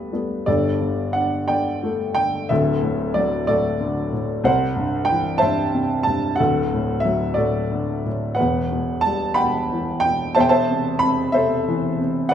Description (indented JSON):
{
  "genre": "classical, lyrical solo piano",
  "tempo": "61 BPM (dotted quarters)",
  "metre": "6/8",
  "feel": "rubato",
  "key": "G major",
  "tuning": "A4 = 439 Hz",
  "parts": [
    { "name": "dark baby grand piano", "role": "solo", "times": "0.0-12.3 s", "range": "D1 to B5", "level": "-18 LUFS", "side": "equal", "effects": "none" }
  ],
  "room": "moderate recital hall reverb, RT60 1.7 s",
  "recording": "minimal, uncompressed stereo recording",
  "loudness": "-18 LUFS",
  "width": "side -9 dB against mid",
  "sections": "0.5-12.3 A section",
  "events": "none",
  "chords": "0.5 Gsus2; 2.5 D; 4.4 C; 6.4 D; 8.4 Emadd9; 10.4 Am/E"
}